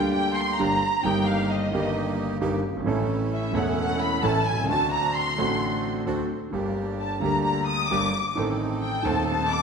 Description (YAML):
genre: tango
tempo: 131 BPM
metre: 4/4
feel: rubato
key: G minor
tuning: A4 = 440 Hz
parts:
  - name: dark studio violin section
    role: second line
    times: 0.0-9.6 s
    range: Eb5 to Eb6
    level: -26 LUFS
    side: left 1 dB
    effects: tape echo
  - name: warm concert grand piano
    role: accompaniment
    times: 0.0-9.6 s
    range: Eb1 to A4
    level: -25 LUFS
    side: equal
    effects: none
  - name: bandoneon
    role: stabs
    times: 0.0-9.6 s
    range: G2 to A4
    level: -32 LUFS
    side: right 4 dB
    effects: none
room: wet scoring stage reverb, RT60 1.8 s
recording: none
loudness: -22 LUFS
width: side -6 dB against mid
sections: 0.0-9.6 A section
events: violin section solo 0.0-9.6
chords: 0.0 Gm; 1.1 Eb/G; 2.9 A; 4.7 D7; 6.5 Gm; 8.4 Adim